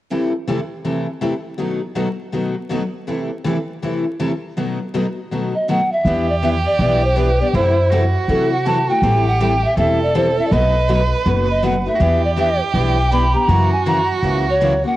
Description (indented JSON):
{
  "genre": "acoustic string swing (jazz manouche)",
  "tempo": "161 BPM",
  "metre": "4/4",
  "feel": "swing 62% on 8ths",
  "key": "E minor",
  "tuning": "A4 = 444 Hz",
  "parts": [
    { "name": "picked steel-string acoustic guitar", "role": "accompaniment", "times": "0.1-15.0 s", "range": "B2 to A4", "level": "-22 LUFS", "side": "left 4 dB", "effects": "cassette tape" },
    { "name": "picked steel-string acoustic guitar", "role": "accompaniment", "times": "0.1-14.7 s", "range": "B2 to B4", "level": "-27 LUFS", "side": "right 4 dB", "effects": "cassette tape" },
    { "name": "mellow hollow polished pan flute", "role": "melody", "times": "5.5-15.0 s", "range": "A4 to B5", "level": "-18 LUFS", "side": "equal", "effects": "cassette tape" },
    { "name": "upright bass", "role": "bass", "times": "6.0-14.8 s", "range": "E1 to C3", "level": "-18 LUFS", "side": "equal", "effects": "none" },
    { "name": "rich violin", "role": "second line", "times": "6.1-15.0 s", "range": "E4 to B4", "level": "-22 LUFS", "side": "right 5 dB", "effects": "cassette tape" }
  ],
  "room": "light reverb, studio reverb",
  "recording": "home recording on cassette, vinyl crackle",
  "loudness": "-15 LUFS",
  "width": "side -15 dB against mid",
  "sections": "0.1-6.1 A section; 6.1-15.0 B section",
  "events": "none",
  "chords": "0.1 C6; 1.6 B7; 3.1 C6; 4.6 B7; 6.1 Em7; 7.5 F#m7b5; 9.0 Am7; 10.5 B7; 12.0 Em7; 13.5 F#7"
}